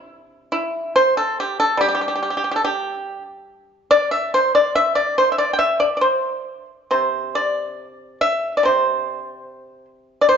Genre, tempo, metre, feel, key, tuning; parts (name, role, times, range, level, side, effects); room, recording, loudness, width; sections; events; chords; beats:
chinese traditional; 67-74 BPM; 2/4; rubato; C gong mode; A4 = 441 Hz
pipa; solo; 0.0-10.4 s; C3 to G5; -17 LUFS; equal
moderate recital hall reverb, RT60 1.5 s; dark, warm production, nothing above 7.7 kHz; -17 LUFS; side -7 dB against mid
0.0-6.9 A section; 6.9-10.4 B section
| 0.06 0.94 | 1.79 2.63 | 3.46 4.31 | 5.16 6.03 | 6.92 7.79 | 8.64 9.48 | 10.29